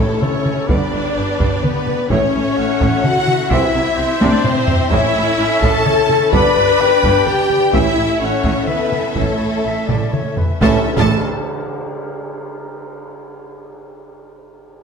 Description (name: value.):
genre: cinematic, epic orchestral film score.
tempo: 128 BPM.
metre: 3/4.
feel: straight.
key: A mixolydian.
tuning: A4 = 440 Hz.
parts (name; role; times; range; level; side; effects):
rich studio violin section; melody; 0.0-11.2 s; A4 to B5; -25 LUFS; left 2 dB; none.
concert flute; second line; 0.0-10.6 s; A4 to G5; -24 LUFS; left 1 dB; none.
warm symphonic violin section; second line; 0.0-11.2 s; A4 to B5; -24 LUFS; left 2 dB; none.
warm symphonic viola section; accompaniment; 0.0-11.2 s; A3 to B4; -24 LUFS; right 2 dB; none.
mellow French horn section; sustained chords; 0.0-10.8 s; A3 to B4; -19 LUFS; left 5 dB; none.
warm symphonic string section; sustained chords; 0.0-10.9 s; A3 to E5; -24 LUFS; left 2 dB; none.
rich symphonic cello section; bass; 0.0-11.2 s; G2 to C3; -23 LUFS; right 3 dB; none.
rich symphonic double bass section; bass; 0.0-11.2 s; G1 to C2; -23 LUFS; right 4 dB; none.
taiko ensemble; drums; 0.2-11.9 s; none; -20 LUFS; equal; none.
dark trombone section; sustained chords; 0.7-10.8 s; D3 to D4; -26 LUFS; right 2 dB; none.
tam-tam; percussion; 10.6-12.8 s; none; -28 LUFS; equal; none.
room: wet scoring stage reverb, RT60 1.6 s.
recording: faint mains hum.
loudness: -13 LUFS.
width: side -5 dB against mid.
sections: 0.0-10.6 A section; 10.6-12.0 B section.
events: drum fill 4.2-4.9, 9.9-10.6; band accent 10.6-11.1.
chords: 0.0 A; 0.7 G; 2.1 A; 3.5 C; 4.9 A; 6.3 G; 7.7 A.